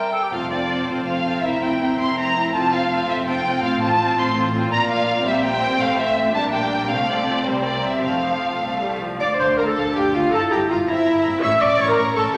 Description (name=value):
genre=quick classical-period movement for symphony orchestra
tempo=108 BPM (dotted quarters)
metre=6/8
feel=rubato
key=F major, D minor from 9.2 s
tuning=A4 = 440 Hz
part: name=rich chamber violin section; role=melody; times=0.0-12.4 s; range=C5 to C#6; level=-25 LUFS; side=equal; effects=none
part: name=mellow clarinet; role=second line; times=0.0-0.3, 9.2-12.4 s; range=G3 to E5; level=-24 LUFS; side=equal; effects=none
part: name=mellow large flute ensemble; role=second line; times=0.0-0.1, 9.2-12.4 s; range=E5 to E6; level=-30 LUFS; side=equal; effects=none
part: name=warm studio violin section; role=second line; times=0.3-12.4 s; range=G3 to E6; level=-31 LUFS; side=equal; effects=none
part: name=rich chamber viola section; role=accompaniment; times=0.3-12.3 s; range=F3 to E5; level=-25 LUFS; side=equal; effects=none
part: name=warm chamber cello section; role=bass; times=0.3-12.4 s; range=C2 to C3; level=-36 LUFS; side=equal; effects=none
part: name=warm chamber double bass section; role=bass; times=0.3-12.4 s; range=F1 to D2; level=-35 LUFS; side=equal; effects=none
part: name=mellow French horn section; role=sustained chords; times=9.2-12.4 s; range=Bb3 to E4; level=-29 LUFS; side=equal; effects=none
room=wet scoring stage reverb, RT60 1.6 s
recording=none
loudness=-20 LUFS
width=mono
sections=0.3-9.2 A section; 9.2-12.4 B section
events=none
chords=0.3 F; 1.4 C7/F; 2.5 F; 3.6 F/A; 4.7 Bb; 5.3 C5/Bb; 5.8 F/A; 6.4 Gm/Bb; 6.9 F/C; 7.5 C5; 8.0 F; 9.2 Dm; 10.3 Edim/G; 11.4 A